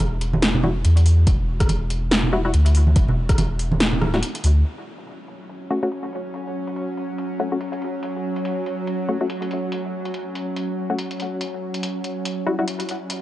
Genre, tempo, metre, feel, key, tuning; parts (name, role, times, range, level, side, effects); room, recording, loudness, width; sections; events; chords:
deep dubstep; 142 BPM; 4/4; swing 58% on 16ths, half-time; A4 = 440 Hz
soft dub sub bass; bass; 0.0-4.6 s; E1 to E2; -18 LUFS; equal
deep house drum kit; drums; 0.0-13.2 s; hi-hat, rim click, snare drum; -25 LUFS; equal; overdrive, low-pass filter on hats, low-pass filter on snare, low-pass filter on room
congas; percussion; 0.0-4.1 s; -24 LUFS; right 2 dB
filtered dub chord stab; stabs; 0.6-12.6 s; G3 to F#4; -28 LUFS; left 2 dB; chorus, dub echo
electronic kick drum; drums; 1.3-3.4 s; -19 LUFS; equal; overdrive
bowed-like drone; sustained chords; 5.3-13.2 s; F#3 to C#4; -27 LUFS; equal; built-in reverb
digital ambience; dry, gritty hardware recording, cassette tape, nothing above 10.9 kHz; -19 LUFS; side -15 dB against mid
0.0-4.6 A section; 4.6-13.2 B section
filter sweep on drum 4.6-13.2
0.0 N.C.; 4.6 F#5; 11.4 N.C.